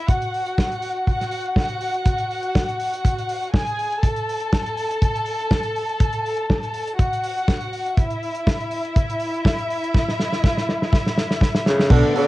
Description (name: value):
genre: disco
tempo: 122 BPM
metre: 4/4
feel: straight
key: unclear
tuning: A4 = 440 Hz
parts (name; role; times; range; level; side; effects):
- dark chamber violin section; second line; 0.0-12.3 s; D4 to A5; -24 LUFS; left 1 dB; none
- warm soul drum kit; drums; 0.1-12.3 s; crash cymbal, hi-hat, kick drum, snare drum; -20 LUFS; equal; cassette tape
- growling tenor saxophone; melody; 11.7-12.3 s; C#3 to D3; -18 LUFS; equal; cassette tape
- electric guitar with an envelope filter; accompaniment; 11.9-12.3 s; D4 to A4; -24 LUFS; right 11 dB; spring reverb
- warm French horn section; sustained chords; 11.9-12.3 s; D3 to B3; -26 LUFS; left 10 dB; stereo widening
- hollow-body short-scale fingered electric bass; bass; 11.9-12.0 s; B1; -15 LUFS; equal; none
room: little or no reverb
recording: home recording on cassette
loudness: -19 LUFS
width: side -17 dB against mid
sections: 0.0-11.9 A section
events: drum fill 9.9-11.9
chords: 0.1 F#sus2; 4.0 F#m; 8.0 N.C.